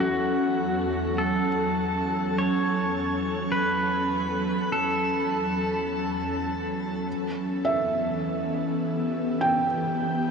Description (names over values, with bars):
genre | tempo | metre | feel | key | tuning
ambient | 51 BPM | 3/4 | straight | unclear | A4 = 440 Hz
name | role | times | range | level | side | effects
pedal steel guitar | melody | 0.0-6.4 s | F#4 to C#5 | -28 LUFS | equal | tape echo
ethereal airy pad | sustained chords | 0.0-10.3 s | E2 to A4 | -26 LUFS | equal | ensemble chorus, built-in reverb
felt-muted upright piano | arpeggios | 0.0-10.3 s | E3 to G5 | -28 LUFS | right 2 dB | tape echo
room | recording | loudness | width
wet shimmer reverb, RT60 8.2 s | cassette tape | -24 LUFS | side -5 dB against mid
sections
0.0-10.3 A section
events
none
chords
0.0 F#m7/E; 7.1 Em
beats
| 0.01 1.19 2.36 | 3.54 4.72 5.89 | 7.07 8.25 9.42